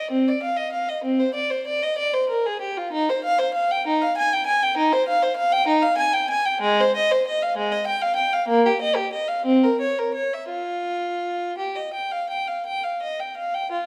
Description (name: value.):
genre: classical, baroque-style suite movement for unaccompanied violin.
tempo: 54-67 BPM (dotted quarters).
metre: 12/8.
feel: rubato.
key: C minor, F minor from 6.6 s.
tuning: A4 = 440 Hz.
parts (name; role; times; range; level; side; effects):
rich violin; solo; 0.0-13.9 s; Ab3 to Ab5; -22 LUFS; equal; none.
room: wet recital hall reverb, RT60 1.5 s.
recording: none.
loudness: -22 LUFS.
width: mono.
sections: 0.0-13.9 A section.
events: none.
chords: none.